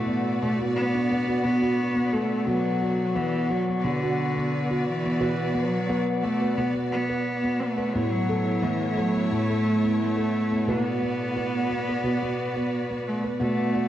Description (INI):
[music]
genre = world meditative, meditative tuned percussion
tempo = 88 BPM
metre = 4/4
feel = straight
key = B minor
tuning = A4 = 436 Hz
[part]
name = clear cello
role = melody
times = 0.0-13.9 s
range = D3 to B3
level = -27 LUFS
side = right 1 dB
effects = shimmer reverb, ping-pong delay
[part]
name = clear studio string section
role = sustained chords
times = 0.0-13.9 s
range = A3 to D5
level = -32 LUFS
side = equal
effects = shimmer reverb
[part]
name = handpan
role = arpeggios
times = 0.0-13.9 s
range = A2 to B4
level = -26 LUFS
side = equal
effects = shimmer reverb
[sound]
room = wet echo chamber reverb, RT60 2.1 s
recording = worn, warbling old tape, cassette tape, warbly pitch drift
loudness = -23 LUFS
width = side -12 dB against mid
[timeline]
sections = 0.0-2.5 A section; 2.5-13.4 B section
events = none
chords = 0.0 Bm; 7.9 A; 10.7 Bm